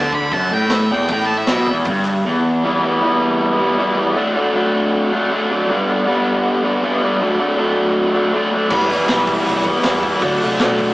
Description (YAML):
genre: garage rock duo or trio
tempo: 158 BPM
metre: 4/4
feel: straight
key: E minor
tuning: A4 = 436 Hz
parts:
  - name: octave-fuzz lead guitar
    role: melody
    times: 0.0-1.7 s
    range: E5 to B5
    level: -21 LUFS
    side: equal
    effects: distortion
  - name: raw garage guitar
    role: riff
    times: 0.0-10.9 s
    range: E2 to E4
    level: -15 LUFS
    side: equal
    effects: overdrive
  - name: hollow-body short-scale fingered electric bass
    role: bass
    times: 0.0-2.2, 8.7-10.9 s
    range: E1 to C3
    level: -33 LUFS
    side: equal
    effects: overdrive
  - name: vintage drum kit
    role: drums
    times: 0.1-1.9, 8.7-10.9 s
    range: crash cymbal, hi-hat, kick drum, snare drum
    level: -22 LUFS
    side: equal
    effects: none
  - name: group handclap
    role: percussion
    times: 0.7-2.1, 9.1-10.7 s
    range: none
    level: -33 LUFS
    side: equal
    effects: none
room: wet stone room reverb, RT60 1.2 s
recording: rough rehearsal-room recording, small speaker sound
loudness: -14 LUFS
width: side -19 dB against mid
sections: 0.0-2.6 A section; 2.6-10.9 B section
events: none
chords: 0.0 Em; 4.1 D; 5.7 G; 7.2 D; 8.7 Em; 10.2 D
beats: 0.33 0.71 | 1.09 1.47 1.86 2.24 | 2.62 3.00 3.38 3.76 | 4.14 4.53 4.91 5.29 | 5.67 6.05 6.43 6.81 | 7.19 7.57 7.95 8.33 | 8.71 9.09 9.47 9.85 | 10.23 10.62